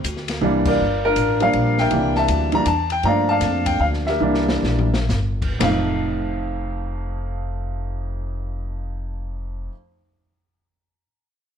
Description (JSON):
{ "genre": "jazz piano trio", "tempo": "112-160 BPM", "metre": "3/4", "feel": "swing 64% on 8ths", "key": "F mixolydian", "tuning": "A4 = 441 Hz", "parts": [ { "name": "warm baby grand piano", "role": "melody", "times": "0.0-9.7 s", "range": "F2 to Bb5", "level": "-20 LUFS", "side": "equal", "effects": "none" }, { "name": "upright bass", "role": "bass", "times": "0.0-9.7 s", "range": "F1 to G2", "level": "-24 LUFS", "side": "equal", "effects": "none" }, { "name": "open jazz drum kit", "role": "drums", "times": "0.0-5.8 s", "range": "crash cymbal, hi-hat, kick drum, ride cymbal, snare drum, toms", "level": "-27 LUFS", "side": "left 2 dB", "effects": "none" } ], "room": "light reverb", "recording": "none", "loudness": "-18 LUFS", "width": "side -8 dB against mid", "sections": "0.8-5.6 A section; 5.6-8.8 B section", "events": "drum fill 0.4-0.8, 4.2-5.1; band accent 0.6; slowing down 3.0-5.6", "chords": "0.4 C7; 0.8 Gm7; 1.9 C7; 3.0 Gm7; 4.2 C7; 5.6 F7", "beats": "0.04 0.41 | 0.79 1.16 1.54 | 1.91 2.28 2.66 | 3.03 3.41 3.79 | 4.20 4.63 5.09 | 5.60 6.13 6.67 | 7.20 7.73 8.27" }